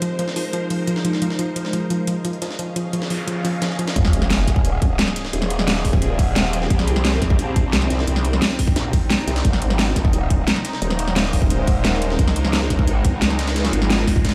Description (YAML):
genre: dark technical drum and bass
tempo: 175 BPM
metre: 4/4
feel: straight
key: F minor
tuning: A4 = 440 Hz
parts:
  - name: swarming drone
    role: sustained chords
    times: 0.0-14.3 s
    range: C3 to F5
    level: -29 LUFS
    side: equal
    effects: built-in reverb, phaser, sidechain pumping
  - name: analog pluck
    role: arpeggios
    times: 0.0-3.9 s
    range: F3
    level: -25 LUFS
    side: equal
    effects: chorus, cassette tape, sidechain pumping, dub echo
  - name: breakbeat sampler-style drum kit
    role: drums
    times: 0.0-14.3 s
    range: hi-hat, snare drum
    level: -32 LUFS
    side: equal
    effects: high-pass filter on hats, high-pass filter on snare
  - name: dubstep drum kit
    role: drums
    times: 0.0-14.3 s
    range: hi-hat, snare drum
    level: -24 LUFS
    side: equal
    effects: none
  - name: noise sweep and sub drop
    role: sound effects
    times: 3.1-5.3 s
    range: none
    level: -27 LUFS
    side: equal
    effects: none
  - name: growl bass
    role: bass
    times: 4.0-14.1 s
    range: Eb1 to Db2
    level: -23 LUFS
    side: equal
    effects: chorus, tube saturation
  - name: electronic kick drum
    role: drums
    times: 4.0-14.3 s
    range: none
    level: -20 LUFS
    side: equal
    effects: none
room: light reverb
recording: played on a big sound system in a bare room, stone room reverb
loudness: -20 LUFS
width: mono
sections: 0.0-4.0 A section; 4.0-14.3 B section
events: filter sweep on synth arpeggio sound 0.0-4.0; noise sweep 3.1-4.0; drop 4.0-14.3; impact 4.0-5.3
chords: 0.0 Ab; 1.2 Db; 4.0 Fm; 6.7 Cm; 9.4 Ab; 12.2 Db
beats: 0.19 0.53 0.88 | 1.22 1.56 1.90 2.25 | 2.59 2.93 3.27 3.62 | 3.96 4.30 4.65 4.99 | 5.33 5.67 6.02 6.36 | 6.70 7.05 7.39 7.73 | 8.07 8.42 8.76 9.10 | 9.45 9.79 10.13 10.47 | 10.82 11.16 11.50 11.85 | 12.19 12.53 12.88 13.22 | 13.56 13.90 14.25